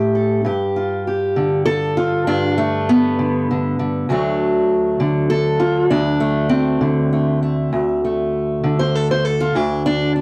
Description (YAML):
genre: acoustic country blues, solo or duo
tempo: 66 BPM (dotted quarters)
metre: 12/8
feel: straight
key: D mixolydian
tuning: A4 = 440 Hz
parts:
  - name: fingerpicked steel-string acoustic guitar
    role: solo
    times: 0.0-10.2 s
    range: D2 to C5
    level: -18 LUFS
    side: equal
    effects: cassette tape
room: moderate small room reverb, RT60 0.5 s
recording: home recording on cassette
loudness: -18 LUFS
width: mono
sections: 0.0-10.2 A section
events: none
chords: 0.4 G7; 4.1 D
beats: | 0.45 1.35 2.26 3.17 | 4.08 4.98 5.89 6.80 | 7.71 8.62 9.54